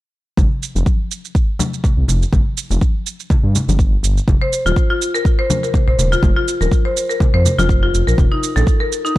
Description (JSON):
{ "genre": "afro house", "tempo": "123 BPM", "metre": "4/4", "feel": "swing 56% on 16ths", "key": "unclear", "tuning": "A4 = 440 Hz", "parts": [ { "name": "dark detuned saw bass", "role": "bass", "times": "0.4-8.6 s", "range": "Eb1 to G2", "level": "-16 LUFS", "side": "equal", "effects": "sidechain pumping" }, { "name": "electronic kick drum", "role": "drums", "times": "0.4-9.2 s", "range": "none", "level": "-15 LUFS", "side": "equal", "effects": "none" }, { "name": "shaker", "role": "drums", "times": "0.4-9.1 s", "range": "none", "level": "-26 LUFS", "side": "right 10 dB", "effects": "none" }, { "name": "congas", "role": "percussion", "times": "0.4-8.8 s", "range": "none", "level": "-23 LUFS", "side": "left 2 dB", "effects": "none" }, { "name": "marimba with medium hard mallets", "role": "arpeggios", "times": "4.4-9.1 s", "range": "Eb4 to C5", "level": "-19 LUFS", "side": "left 2 dB", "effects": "sidechain pumping, digital delay" } ], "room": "studio ambience", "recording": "dark, warm production", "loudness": "-14 LUFS", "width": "side -16 dB against mid", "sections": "0.4-9.2 A section", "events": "none", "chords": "0.4 Fsus2; 4.3 Fsus4; 8.2 Eb5" }